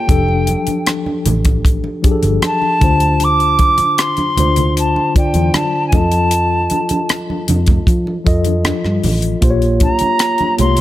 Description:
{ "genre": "lush 1970s-style soul", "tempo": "77 BPM", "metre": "4/4", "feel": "straight", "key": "F major", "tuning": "A4 = 440 Hz", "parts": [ { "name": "silver concert flute", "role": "melody", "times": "0.0-10.8 s", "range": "G5 to D6", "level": "-16 LUFS", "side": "equal", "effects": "tape echo" }, { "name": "mellow tine electric piano", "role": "accompaniment", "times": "0.0-10.8 s", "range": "D3 to Eb5", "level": "-19 LUFS", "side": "left 2 dB", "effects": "medium stereo tremolo" }, { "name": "vintage muted fingered electric bass", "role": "bass", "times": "0.1-10.8 s", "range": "F1 to F3", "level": "-17 LUFS", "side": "equal", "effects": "none" }, { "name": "tight funk drum kit", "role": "drums", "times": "0.1-10.8 s", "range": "hi-hat, kick drum, rim click", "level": "-16 LUFS", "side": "equal", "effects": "none" }, { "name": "congas", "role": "percussion", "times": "0.3-10.8 s", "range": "none", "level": "-24 LUFS", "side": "right 3 dB", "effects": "none" } ], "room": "light reverb, studio reverb", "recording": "none", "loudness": "-12 LUFS", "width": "side -14 dB against mid", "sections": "0.0-10.8 A section", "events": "none", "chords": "0.1 F69; 2.8 Dm7; 5.9 F7; 9.4 Bbm6" }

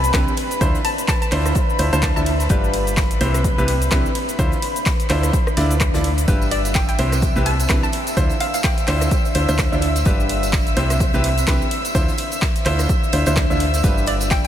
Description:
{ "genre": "piano house", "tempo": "127 BPM", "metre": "4/4", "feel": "swing 58% on 16ths", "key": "D dorian", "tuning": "A4 = 442 Hz", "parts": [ { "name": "hollow square pluck", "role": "melody", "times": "0.0-2.6, 6.5-9.0, 14.1-14.5 s", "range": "D5 to A5", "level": "-29 LUFS", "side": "equal", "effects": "wide subtle chorus, diffuse ambient delay" }, { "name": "warm symphonic violin section", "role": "sustained chords", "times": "0.0-14.5 s", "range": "B4 to E6", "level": "-27 LUFS", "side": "left 1 dB", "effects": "sidechain pumping" }, { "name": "solid FM bass", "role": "bass", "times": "0.0-14.5 s", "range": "G1 to D2", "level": "-21 LUFS", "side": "equal", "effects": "sidechain pumping" }, { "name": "punchy analog drum machine", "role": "drums", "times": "0.0-14.5 s", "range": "handclaps, hi-hat, ride cymbal, rim click, shaker", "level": "-26 LUFS", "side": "equal", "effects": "overdrive" }, { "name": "bright baby grand piano", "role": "riff", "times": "0.1-14.5 s", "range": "C3 to E5", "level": "-22 LUFS", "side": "equal", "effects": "sidechain pumping, diffuse ambient delay" }, { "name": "electronic kick drum", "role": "drums", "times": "0.1-14.4 s", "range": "none", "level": "-20 LUFS", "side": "equal", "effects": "overdrive" }, { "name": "modern studio drum kit", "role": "drums", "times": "0.1-14.4 s", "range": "hi-hat, snare drum", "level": "-37 LUFS", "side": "left 3 dB", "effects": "none" }, { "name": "tambourine", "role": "percussion", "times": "6.3-14.5 s", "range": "none", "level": "-35 LUFS", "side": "right 5 dB", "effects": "none" } ], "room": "moderate cathedral reverb, RT60 5.9 s", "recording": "dreamy mix soaked in reverb", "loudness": "-16 LUFS", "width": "side -10 dB against mid", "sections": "0.0-14.5 A section", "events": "none", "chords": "0.4 Dm9; 2.5 G7; 3.2 Cmaj7; 4.2 Dm9; 6.3 G7; 7.0 Cmaj7; 7.9 Dm9; 10.1 G7; 10.8 Cmaj7; 11.7 Dm9; 13.8 G7" }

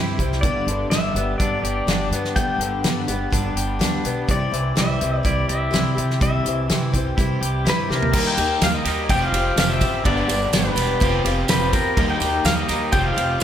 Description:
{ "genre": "folk rock and heartland rock", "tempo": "125 BPM", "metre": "4/4", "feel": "straight", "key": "G mixolydian", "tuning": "A4 = 439 Hz", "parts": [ { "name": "picked twelve-string acoustic guitar", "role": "accompaniment", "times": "0.0-13.4 s", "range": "G2 to G4", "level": "-27 LUFS", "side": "left 3 dB", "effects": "analog chorus, slapback echo" }, { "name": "electric guitar through a small old amp", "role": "riff", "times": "0.0-13.4 s", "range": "G2 to G4", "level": "-27 LUFS", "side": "equal", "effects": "slapback echo" }, { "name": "upright bass", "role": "bass", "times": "0.0-13.4 s", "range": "E1 to C3", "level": "-25 LUFS", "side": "right 1 dB", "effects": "none" }, { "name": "natural country drum kit", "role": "drums", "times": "0.2-13.4 s", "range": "crash cymbal, hi-hat, kick drum, ride cymbal, snare drum, toms", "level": "-22 LUFS", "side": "right 1 dB", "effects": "none" }, { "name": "pedal steel guitar", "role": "melody", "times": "0.4-13.4 s", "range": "Bb4 to G5", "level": "-24 LUFS", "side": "left 2 dB", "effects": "slapback echo, analog delay" }, { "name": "tambourine", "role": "percussion", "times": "8.3-13.4 s", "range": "none", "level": "-34 LUFS", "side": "right 6 dB", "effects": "none" } ], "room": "moderate lush hall reverb, RT60 2.2 s", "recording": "big arena sound", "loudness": "-18 LUFS", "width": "side -10 dB against mid", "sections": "0.0-8.1 A section; 8.1-13.4 B section", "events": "drum fill 7.9", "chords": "0.4 G; 4.3 C; 8.1 Eb; 9.1 Fsus2; 10.1 G; 11.0 Fsus2; 12.0 Eb; 12.9 Fsus2" }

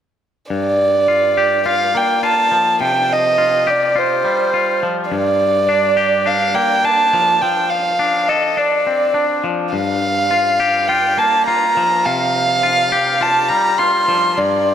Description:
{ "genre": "rock", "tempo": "104 BPM", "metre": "4/4", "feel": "straight", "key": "G minor", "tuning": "A4 = 440 Hz", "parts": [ { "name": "dark violin", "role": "melody", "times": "0.5-14.7 s", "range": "C5 to C6", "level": "-15 LUFS", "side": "right 2 dB", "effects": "digital delay" }, { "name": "twangy electric guitar", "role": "arpeggios", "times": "0.5-14.7 s", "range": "G2 to A4", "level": "-19 LUFS", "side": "left 5 dB", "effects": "digital delay" } ], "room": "moderate huge ambient reverb, RT60 4.6 s", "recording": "none", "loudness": "-13 LUFS", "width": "side -9 dB against mid", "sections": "0.5-14.7 A section", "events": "none", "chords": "0.5 Gm7; 2.8 Csus4; 5.1 Gm7; 7.4 Dm7/F; 9.7 Gm7; 12.1 Csus4" }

